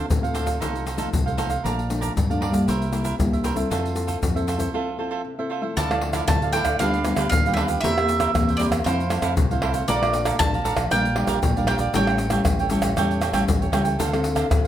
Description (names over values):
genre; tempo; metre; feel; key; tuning
samba and choro; 117 BPM; 4/4; straight; F major, D minor from 5.8 s; A4 = 444 Hz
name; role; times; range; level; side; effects
cavaquinho; accompaniment; 0.0-14.7 s; D4 to Bb5; -28 LUFS; right 6 dB; none
nylon-string guitar; accompaniment; 0.0-14.7 s; F2 to A4; -26 LUFS; left 2 dB; none
deep dub fingered electric bass; bass; 0.0-14.7 s; A1 to G2; -27 LUFS; equal; none
egg shaker, surdo, pandeiro and tamborim; percussion; 0.1-14.7 s; none; -24 LUFS; left 1 dB; none
bowl-back mandolin; second line; 5.8-12.7 s; C5 to A5; -26 LUFS; right 2 dB; none
room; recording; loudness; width
moderate large studio reverb, RT60 1.0 s; none; -20 LUFS; side -11 dB against mid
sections
0.0-5.8 A section; 5.8-14.7 B section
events
break 4.7-5.8; mandolin solo 5.8-14.7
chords
0.0 Dm7; 0.6 F7/C; 1.6 Bbmaj7; 2.7 C7; 3.7 Fmaj7; 5.8 Dmadd9; 6.8 G7/D; 7.8 C7/E; 8.9 Fmaj7; 9.9 Bbmaj7; 10.9 Gm7/Bb; 11.9 A7; 14.0 Dm7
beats
0.10 0.62 1.13 | 1.65 2.16 2.68 3.19 | 3.71 4.22 4.74 5.26 | 5.77 6.29 6.80 7.32 | 7.83 8.34 8.86 9.37 | 9.89 10.40 10.91 11.43 | 11.94 12.46 12.97 13.48 | 14.00 14.51